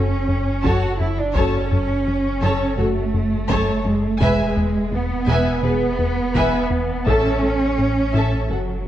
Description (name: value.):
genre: cinematic, hybrid orchestral and electronic film score.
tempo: 84 BPM.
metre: 4/4.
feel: straight.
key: F# minor.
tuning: A4 = 440 Hz.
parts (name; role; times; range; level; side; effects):
mellow French horn section; sustained chords; 0.0-8.8 s; F#4 to B4; -29 LUFS; left 2 dB; none.
plucky analog bass; riff; 0.0-8.7 s; E2 to A2; -24 LUFS; left 2 dB; none.
saturated sub bass; bass; 0.0-8.9 s; E1 to A1; -28 LUFS; equal; none.
warm symphonic cello section; bass; 0.0-8.9 s; F#3 to F#4; -22 LUFS; right 2 dB; none.
warm symphonic violin section; melody; 0.6-8.6 s; B4 to A5; -31 LUFS; left 3 dB; none.
clear symphonic violin section; second line; 0.6-8.6 s; F#4 to E5; -29 LUFS; left 2 dB; none.
warm symphonic viola section; accompaniment; 0.6-8.6 s; A4 to B4; -27 LUFS; right 1 dB; none.
rich studio double bass section; bass; 0.6-8.6 s; E1 to A1; -28 LUFS; right 3 dB; none.
taiko ensemble; drums; 0.6-8.9 s; none; -27 LUFS; equal; none.
room: moderate concert hall reverb, RT60 2.1 s.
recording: worn, warbling old tape, cassette tape, warbly pitch drift.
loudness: -17 LUFS.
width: side -12 dB against mid.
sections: 0.0-8.9 A section.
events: none.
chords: 0.0 F#m; 4.2 E; 7.1 A.